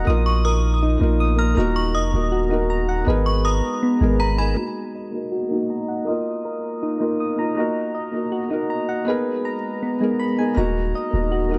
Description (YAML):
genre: hip hop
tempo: 160 BPM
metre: 4/4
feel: half-time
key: Eb minor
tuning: A4 = 438 Hz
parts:
  - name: felt-muted upright piano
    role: accompaniment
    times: 0.0-11.6 s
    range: Bb3 to Bb4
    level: -28 LUFS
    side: equal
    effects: low-pass filter
  - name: glass harmonica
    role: sustained chords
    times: 0.0-11.6 s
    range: Ab3 to Eb5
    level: -32 LUFS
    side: equal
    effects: low-pass filter
  - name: soft electric-piano-like synth keys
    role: arpeggios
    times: 0.0-11.6 s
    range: Ab3 to Eb6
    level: -27 LUFS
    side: equal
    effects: chorus, low-pass filter, digital delay
  - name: long sustained 808-style bass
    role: bass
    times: 0.0-4.5, 10.6-11.6 s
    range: Eb1 to Bb1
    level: -23 LUFS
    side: equal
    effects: none
  - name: metallic FM bell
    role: second line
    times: 0.3-4.6 s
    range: Bb5 to F6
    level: -30 LUFS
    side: equal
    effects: chorus, digital delay
room: light reverb, studio reverb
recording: dark, warm production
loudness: -22 LUFS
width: mono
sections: 0.0-4.6 A section; 4.6-10.6 B section; 10.6-11.6 C section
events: filter sweep 4.6-10.6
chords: 0.1 Bbsus4; 1.6 Ebm; 3.1 Abmadd9; 4.6 Ebm; 6.1 Bbsus4; 7.6 Ebm; 9.1 Abmadd9; 10.6 Ebm